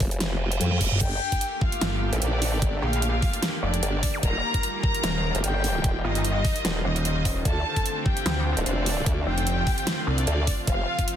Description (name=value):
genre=heavy wobble dubstep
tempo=149 BPM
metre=4/4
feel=swing 55% on 16ths, half-time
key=unclear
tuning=A4 = 441 Hz
part: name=formant-sweep wobble bass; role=bass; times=0.0-10.9 s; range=Eb1 to F2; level=-26 LUFS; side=equal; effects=chorus, overdrive
part: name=dubstep drum kit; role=drums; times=0.0-11.2 s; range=crash cymbal, hi-hat, snare drum, toms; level=-29 LUFS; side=equal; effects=overdrive
part: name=electronic kick drum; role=drums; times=0.0-11.1 s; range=none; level=-25 LUFS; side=equal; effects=overdrive
part: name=reverse cymbal and zap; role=sound effects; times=0.4-1.0, 4.1-4.2 s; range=none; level=-31 LUFS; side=right 4 dB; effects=none
part: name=dark studio violin section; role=melody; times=1.0-11.2 s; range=D4 to Bb5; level=-29 LUFS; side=left 1 dB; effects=ping-pong delay
part: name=lush unison pad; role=sustained chords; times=1.0-11.2 s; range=C3 to G4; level=-32 LUFS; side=right 1 dB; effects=chorus, sidechain pumping
part: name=pulsing pluck wobble bass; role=bass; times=1.8-10.3 s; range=Eb1 to D2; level=-25 LUFS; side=equal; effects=chorus, overdrive
room=digital ambience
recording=dense, heavily limited modern master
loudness=-22 LUFS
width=side -10 dB against mid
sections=0.0-11.2 A section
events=reverse cymbal 0.4-1.0; drum fill 0.6-1.0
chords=0.0 N.C.; 1.0 Gmadd9; 4.2 Ebadd9; 7.5 Dm7